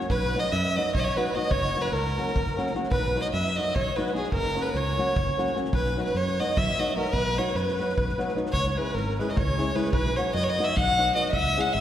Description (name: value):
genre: balkan folk, Balkan wedding band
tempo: 299 BPM (eighths)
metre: 7/8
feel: straight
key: B major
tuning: A4 = 435 Hz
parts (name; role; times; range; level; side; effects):
- flamenco guitar; accompaniment; 0.0-11.7 s; F#3 to G#4; -30 LUFS; left 1 dB; none
- natural country drum kit; percussion; 0.0-11.8 s; kick drum, snare drum; -32 LUFS; equal; none
- rich fiddle; melody; 0.1-11.8 s; G#4 to F#5; -27 LUFS; equal; none
- musette accordion; second line; 0.1-11.8 s; G#4 to F#5; -33 LUFS; right 2 dB; none
- modern bright fingered electric bass; bass; 0.1-11.8 s; F#1 to F#2; -30 LUFS; equal; none
room: wet church reverb, RT60 3.0 s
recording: recorded in a church or concert hall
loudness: -23 LUFS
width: side -11 dB against mid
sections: 0.0-8.5 A section; 8.5-11.8 B section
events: none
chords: 0.1 B; 1.5 F#; 2.9 B; 4.3 F#; 5.7 B; 8.5 C#m; 9.9 B